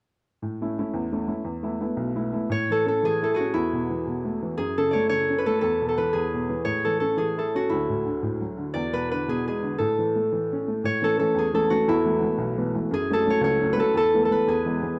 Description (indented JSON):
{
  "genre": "celtic folk",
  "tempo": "115 BPM (dotted quarters)",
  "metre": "6/8",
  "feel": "straight",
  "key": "A major",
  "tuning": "A4 = 440 Hz",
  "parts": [
    { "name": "warm upright piano", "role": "accompaniment", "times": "0.4-15.0 s", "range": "B1 to E4", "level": "-29 LUFS", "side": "equal", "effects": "none" },
    { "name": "concert harp", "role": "melody", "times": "2.5-15.0 s", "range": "E4 to D5", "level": "-26 LUFS", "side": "equal", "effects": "none" }
  ],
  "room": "studio reverb",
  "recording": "dry, close 1970s-style studio recording",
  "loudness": "-25 LUFS",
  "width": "mono",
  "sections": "0.4-2.5 A section; 2.5-10.8 B section; 10.8-15.0 B section",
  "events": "none",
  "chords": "0.4 A; 1.5 Esus4; 2.5 A; 3.5 Esus4; 4.6 F#m; 5.6 Esus4; 6.7 A; 7.7 D; 8.8 E7; 9.8 A; 11.9 Esus4; 12.9 F#m; 14.0 Esus4; 14.5 E"
}